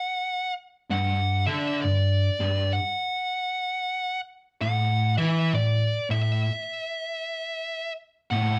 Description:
metal; 65 BPM; 4/4; swing 61% on 8ths; A4 = 437 Hz
fuzz lead guitar; melody; 0.0-8.6 s; D5 to F#5; -30 LUFS; equal; distortion
fuzz guitar; riff; 0.9-8.6 s; G2 to E3; -26 LUFS; equal; distortion
moderate studio reverb, RT60 0.7 s; band playing live in one room; -26 LUFS; mono
0.0-8.6 A section
0.0 G5; 4.6 A5
| 0.91 1.84 2.76 3.69 | 4.61 5.54 6.46 7.39 | 8.32

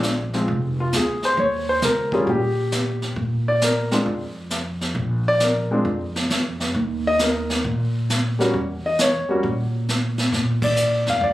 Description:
jazz piano trio; 134 BPM; 4/4; swing 67% on 8ths; A4 = 439 Hz
warm grand piano; melody; 0.0-11.3 s; F3 to F5; -20 LUFS; left 1 dB; plate reverb
upright bass; bass; 0.0-11.3 s; F1 to Bb2; -24 LUFS; equal
jazz brush drum kit; drums; 0.0-11.3 s; brushed snare drum, crash cymbal, hi-hat, kick drum, snare drum; -25 LUFS; right 1 dB
moderate studio reverb, RT60 0.7 s; recorded on a phone in the room, club reverb, compression; -19 LUFS; side -15 dB against mid
0.0-11.3 A section
band accent 10.5
0.0 Bb7; 1.4 Eb7; 3.2 Bb5; 6.7 Eb5; 8.5 Edim7(no3); 10.3 Bb
0.04 0.49 0.93 | 1.38 1.83 2.27 2.72 | 3.17 3.62 4.06 4.51 | 4.96 5.41 5.85 6.30 | 6.75 7.20 7.64 8.09 | 8.54 8.98 9.43 9.88 | 10.32 10.77 11.22

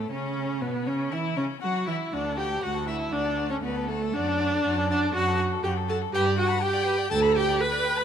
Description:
quick classical-period movement for string quartet; 120 BPM; 4/4; rubato; D major; A4 = 438 Hz
rich violin; melody; 0.0-8.0 s; A3 to B5; -33 LUFS; left 12 dB
rich violin; second line; 0.0-8.0 s; A4 to B5; -33 LUFS; left 5 dB
rich viola; accompaniment; 0.0-8.0 s; A3 to B4; -26 LUFS; right 2 dB
rich cello; bass; 0.0-7.5 s; D2 to F#3; -30 LUFS; right 4 dB
moderate concert hall reverb, RT60 2.4 s; close, detailed microphones; -24 LUFS; side -8 dB against mid
0.0-8.0 A section
0.1 Bsus24; 2.1 D; 4.2 D/F#; 6.1 G
| 0.11 0.62 1.12 1.62 | 2.12 2.63 3.12 3.62 | 4.15 4.66 5.15 5.64 | 6.14 6.63 7.12 7.61

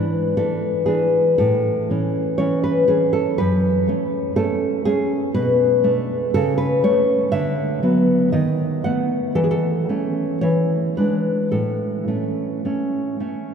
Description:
romantic piece for solo classical guitar; 52-62 BPM; 2/4; rubato; A major; A4 = 440 Hz
nylon-string guitar; solo; 0.0-13.5 s; F#2 to F#5; -17 LUFS; equal; slapback echo
wet cathedral reverb, RT60 6.2 s; in a vast, echoing space; -17 LUFS; side -7 dB against mid
0.0-13.5 A section
0.0 E7; 1.4 A; 3.4 F#m; 5.3 Bm7; 6.3 A/C#; 7.3 Bm/D; 8.3 B7/D#; 9.3 A/E; 10.4 E7; 11.5 A
0.38 | 1.39 2.40 | 3.38 4.35 | 5.34 6.33 | 7.31 8.32 | 9.35 10.41 | 11.51 12.63

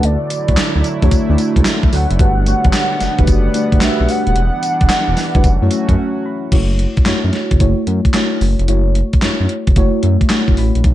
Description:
R&B, new jack swing; 111 BPM; 4/4; swing 67% on 16ths; A4 = 442 Hz
warm velvety synth lead; melody; 0.0-6.3 s; C#5 to F#5; -21 LUFS; right 1 dB; chorus
mellow FM electric piano; accompaniment; 0.0-10.9 s; G3 to B5; -19 LUFS; left 1 dB; chorus, phaser
chorused pulse-width pad; sustained chords; 0.0-6.5, 10.8-10.9 s; D3 to F#5; -23 LUFS; right 2 dB
smooth synth bass; bass; 0.0-10.9 s; D#1 to F#2; -15 LUFS; equal
gated 80s digital drum machine; drums; 0.0-10.9 s; crash cymbal, handclaps, hi-hat, kick drum, snare drum, tambourine; -15 LUFS; equal; gated reverb, gated reverb snare, vintage 12-bit sampler grit
little or no reverb; dark, warm production; -12 LUFS; side -14 dB against mid
0.0-6.5 A section; 6.5-10.8 B section
FM electric piano fill 5.4-6.5, 9.8-10.8; break 6.0-6.5
0.0 Dmaj9; 2.2 Gmaj9; 4.4 Em9; 5.4 F#m7
| 0.03 0.57 1.11 1.65 | 2.19 2.73 3.27 3.82 | 4.36 4.90 5.44 5.98 | 6.52 7.06 7.60 8.14 | 8.68 9.22 9.76 10.30 | 10.84

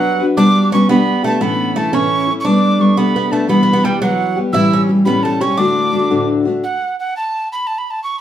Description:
celtic folk; 115 BPM (dotted quarters); 6/8; straight; D major; A4 = 440 Hz
breathy mellow tin whistle; melody; 0.0-8.2 s; F#5 to E6; -18 LUFS; right 2 dB; plate reverb
Irish bouzouki; second line; 0.0-6.2 s; F#3 to E4; -19 LUFS; right 4 dB
picked steel-string acoustic guitar; accompaniment; 0.0-6.6 s; D2 to B4; -14 LUFS; left 1 dB
wet studio reverb, RT60 0.6 s; heard from further back in the room; -12 LUFS; side -11 dB against mid
0.0-6.6 A section; 6.6-8.2 B section
0.4 G; 1.4 A; 2.5 Gadd9; 3.5 Em; 4.5 A7; 5.6 D; 6.6 N.C.
| 0.37 0.89 | 1.41 1.94 | 2.46 2.98 | 3.50 4.02 | 4.54 5.06 | 5.58 6.11 | 6.63 7.15 | 7.67

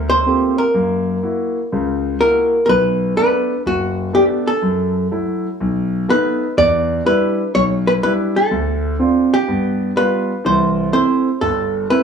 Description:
jazz; 124 BPM; 4/4; swing 68% on 8ths; B minor; A4 = 440 Hz
warm concert grand piano; accompaniment; 0.0-12.0 s; F#1 to G4; -18 LUFS; equal
archtop guitar, miked and amplified; melody; 0.1-12.0 s; F#4 to D5; -17 LUFS; equal; plate reverb
wet club reverb, RT60 0.7 s; heard from further back in the room, small room ambience; -15 LUFS; side -6 dB against mid
0.0-2.7 A section; 2.7-12.0 B section
0.0 Gm11; 0.7 F#7; 2.7 Bm7; 4.6 F#m7; 5.6 B7; 6.6 Em7; 8.5 Dm7; 9.5 G7; 10.4 C6
0.26 | 0.74 1.23 1.71 2.20 | 2.68 3.17 3.65 4.14 | 4.62 5.11 5.59 6.08 | 6.56 7.05 7.53 8.02 | 8.50 8.98 9.47 9.96 | 10.44 10.92 11.41 11.89

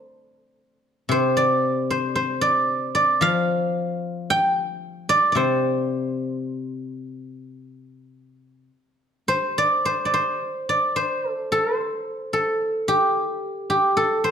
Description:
chinese traditional, Chinese solo plucked strings; 56 BPM; 4/4; rubato; C zhi mode; A4 = 440 Hz
guzheng; solo; 0.0-14.3 s; C3 to G5; -20 LUFS; equal
moderate recital hall reverb, RT60 1.3 s; dark, warm production; -20 LUFS; side -7 dB against mid
0.0-9.8 A section; 9.8-14.3 B section
0.06 | 1.11 2.16 3.24 4.32 | 5.39 6.47 7.56 8.70 | 9.84 10.95 12.05 13.13 | 14.21

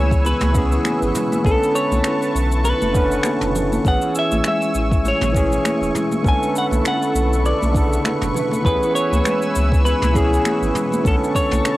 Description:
sunset chillout; 100 BPM; 4/4; swing 56% on 16ths; B dorian; A4 = 440 Hz
clean electric guitar; melody; 0.0-11.8 s; G#4 to G#5; -23 LUFS; equal; cassette tape, analog delay
barky tine electric piano; accompaniment; 0.0-11.8 s; C#3 to B4; -22 LUFS; right 1 dB; auto-pan
lush unison pad; sustained chords; 0.0-11.8 s; A4 to E6; -26 LUFS; right 1 dB; chorus
warm sub bass; bass; 0.0-11.6 s; E1 to C#2; -20 LUFS; equal
wind-like tuned noise texture; texture; 0.0-11.8 s; E4 to C#6; -30 LUFS; left 1 dB; built-in reverb
electronic kick drum; drums; 0.1-11.5 s; -20 LUFS; equal
jazz brush drum kit; drums; 0.1-11.8 s; cabasa, finger snaps, toms; -28 LUFS; equal
buzzing kalimba; arpeggios; 0.2-11.8 s; G#3 to B4; -28 LUFS; left 1 dB; analog delay
congas; percussion; 0.4-11.6 s; -29 LUFS; right 1 dB
moderate booth ambience, RT60 0.3 s; home recording on cassette; -16 LUFS; side -17 dB against mid
0.0-11.8 A section
0.0 C#m7; 1.4 Bm9; 3.8 Amaj7; 6.2 Bm9; 8.6 C#m7; 11.0 Bm9
0.25 0.85 | 1.45 2.05 2.65 3.25 | 3.85 4.45 5.05 5.65 | 6.25 6.85 7.45 8.05 | 8.65 9.25 9.85 10.45 | 11.05 11.65

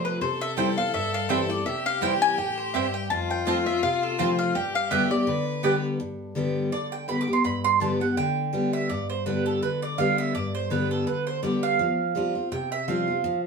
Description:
bluegrass; 166 BPM; 4/4; swing 55% on 8ths; G mixolydian; A4 = 440 Hz
mandolin; melody; 0.0-5.4 s; A4 to A5; -27 LUFS; left 2 dB; slapback echo, plate reverb
clear fiddle; second line; 0.0-5.8 s; F4 to B4; -30 LUFS; left 5 dB
picked steel-string acoustic guitar; accompaniment; 0.0-13.5 s; F2 to G4; -27 LUFS; left 2 dB
mandolin; stabs; 0.6-13.4 s; B3 to D6; -26 LUFS; right 7 dB
wet studio reverb, RT60 0.6 s; heard from further back in the room; -23 LUFS; side -5 dB against mid
0.0-6.0 A section; 6.0-13.5 B section
mandolin solo 6.0-13.5
0.2 C; 3.1 F; 4.6 G; 11.8 Fsus2
| 0.21 0.57 0.94 1.30 | 1.66 2.02 2.38 2.74 | 3.10 3.47 3.83 4.19 | 4.55 4.91 5.28 5.64 | 6.00 6.36 6.72 7.09 | 7.45 7.81 8.17 8.54 | 8.90 9.26 9.62 9.98 | 10.35 10.71 11.07 11.43 | 11.80 12.16 12.52 12.88 | 13.24

